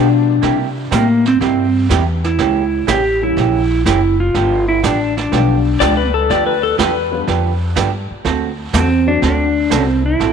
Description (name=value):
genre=country, western swing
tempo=123 BPM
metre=4/4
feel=swing 69% on 8ths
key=G mixolydian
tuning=A4 = 440 Hz
part: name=pedal steel guitar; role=second line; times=0.0-0.6, 5.8-7.3 s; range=D4 to D5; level=-17 LUFS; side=left 10 dB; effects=none
part: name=dark upright piano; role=accompaniment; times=0.0-9.2 s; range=E3 to F#4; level=-26 LUFS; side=left 14 dB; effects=none
part: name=vintage hollow-body jazz guitar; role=accompaniment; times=0.0-10.3 s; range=C3 to A4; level=-21 LUFS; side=right 12 dB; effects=none
part: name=upright bass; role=bass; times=0.0-10.3 s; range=F#1 to C3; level=-18 LUFS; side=left 1 dB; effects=none
part: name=vintage brush drum kit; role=drums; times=0.4-10.3 s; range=brushed snare drum, hi-hat, kick drum, snare drum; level=-23 LUFS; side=right 7 dB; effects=none
part: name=clean lap steel guitar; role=melody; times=0.9-10.3 s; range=Bb3 to G4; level=-16 LUFS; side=right 1 dB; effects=none
room=light reverb, small room ambience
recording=1960s-style stereo with parts hard left and right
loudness=-13 LUFS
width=side -6 dB against mid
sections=0.0-10.3 A section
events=none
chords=0.4 C7; 2.4 C#dim7; 4.3 G7; 8.3 D7